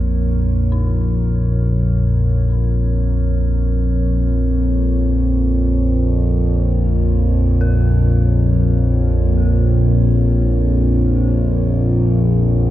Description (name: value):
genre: dark ambient drone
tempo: free time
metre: none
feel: none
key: unclear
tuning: A4 = 440 Hz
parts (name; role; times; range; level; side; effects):
- dark analog pad; sustained chords; 0.0-12.7 s; Bb3 to Db5; -28 LUFS; right 2 dB; chorus
- analog drone; drone; 0.0-12.7 s; Bb1 to F2; -14 LUFS; equal; chorus
- dark detuned synth bell; arpeggios; 0.7-12.7 s; Eb4 to Bb4; -39 LUFS; left 2 dB; chorus, diffuse ambient delay
room: wet cathedral reverb, RT60 5.0 s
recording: in a vast, echoing space, cassette tape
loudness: -14 LUFS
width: side -14 dB against mid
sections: 0.0-12.7 A section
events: fade-in on analog synth pad 0.0-12.7; fade-in on synth bell 0.0-12.7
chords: 0.0 Bbm